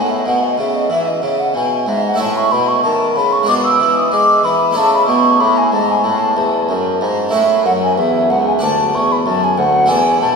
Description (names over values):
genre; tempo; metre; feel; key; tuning
classical, baroque-style sonata movement with continuo; 93 BPM; 4/4; straight; unclear; A4 = 440 Hz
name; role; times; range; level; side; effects
mellow baroque flute; melody; 0.0-10.4 s; D#5 to E6; -14 LUFS; left 1 dB; none
harpsichord; accompaniment; 0.0-10.4 s; C#2 to D5; -19 LUFS; right 2 dB; none
warm bassoon; bass; 0.0-10.4 s; C#2 to G#3; -19 LUFS; equal; none
room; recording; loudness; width
wet cathedral reverb, RT60 5.9 s; recorded in a church or concert hall; -12 LUFS; side -4 dB against mid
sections
0.0-10.4 A section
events
none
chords
0.0 E; 2.2 A; 3.5 G#dim/B; 4.8 A; 8.6 D